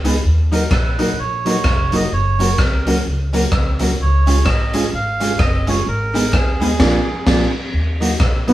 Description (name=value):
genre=ska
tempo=128 BPM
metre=4/4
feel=swing 60% on 8ths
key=Eb minor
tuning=A4 = 440 Hz
part: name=mellow electric guitar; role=accompaniment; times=0.0-8.5 s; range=F3 to Ab4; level=-21 LUFS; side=right 2 dB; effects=slapback echo
part: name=tack piano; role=stabs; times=0.0-8.5 s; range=Bb3 to Cb5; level=-25 LUFS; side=left 2 dB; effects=none
part: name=upright bass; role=bass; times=0.0-8.5 s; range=F1 to Eb2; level=-19 LUFS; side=equal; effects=none
part: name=raw garage drum kit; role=drums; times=0.0-8.5 s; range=crash cymbal, hi-hat, kick drum, rim click, snare drum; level=-18 LUFS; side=equal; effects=none
part: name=melodica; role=melody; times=0.5-7.5 s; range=Ab4 to F5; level=-23 LUFS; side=right 4 dB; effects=none
part: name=group handclap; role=percussion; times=0.7-6.5 s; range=none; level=barely audible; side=none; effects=none
part: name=mellow trombone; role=melody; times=8.5 s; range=Cb4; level=-9 LUFS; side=equal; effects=none
room=moderate studio reverb, RT60 0.6 s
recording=band playing live in one room, vinyl crackle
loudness=-14 LUFS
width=side -14 dB against mid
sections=0.0-7.7 A section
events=band accent 6.8-7.7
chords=0.2 Ebm; 2.1 Gb; 4.0 Db; 5.9 Abm; 6.8 Bb; 7.7 Ebm